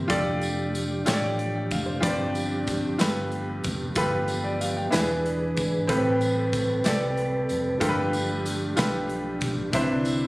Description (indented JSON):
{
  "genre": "slow gospel",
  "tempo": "62 BPM (dotted quarters)",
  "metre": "6/8",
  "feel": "straight",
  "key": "unclear",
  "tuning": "A4 = 440 Hz",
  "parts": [
    { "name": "clear baby grand piano", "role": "accompaniment", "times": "0.0-10.3 s", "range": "G2 to G5", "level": "-27 LUFS", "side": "equal", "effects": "none" },
    { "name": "mellow tonewheel organ", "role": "sustained chords", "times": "0.0-10.3 s", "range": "D3 to B4", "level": "-28 LUFS", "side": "right 1 dB", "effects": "slow rotary speaker" },
    { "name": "hollow-body short-scale fingered electric bass", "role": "bass", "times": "0.0-10.3 s", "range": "E1 to C2", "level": "-31 LUFS", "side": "equal", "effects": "none" },
    { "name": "modern studio drum kit", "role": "drums", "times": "0.1-10.2 s", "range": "hi-hat, kick drum, snare drum", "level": "-30 LUFS", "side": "equal", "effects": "none" },
    { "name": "tambourine", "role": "percussion", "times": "0.4-10.3 s", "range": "none", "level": "-38 LUFS", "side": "equal", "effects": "none" }
  ],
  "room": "light reverb",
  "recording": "recorded on a phone in the room, studio reverb, compression",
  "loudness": "-23 LUFS",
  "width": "side -20 dB against mid",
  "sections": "0.0-10.3 A section",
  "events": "none",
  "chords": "0.1 F69; 2.0 G7sus4; 3.0 G9; 4.9 E7; 5.9 Am9; 7.8 G9; 9.7 Cmaj9",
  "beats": "| 0.10 1.06 | 2.03 2.99 | 3.96 4.92 | 5.88 6.85 | 7.81 8.77 | 9.73"
}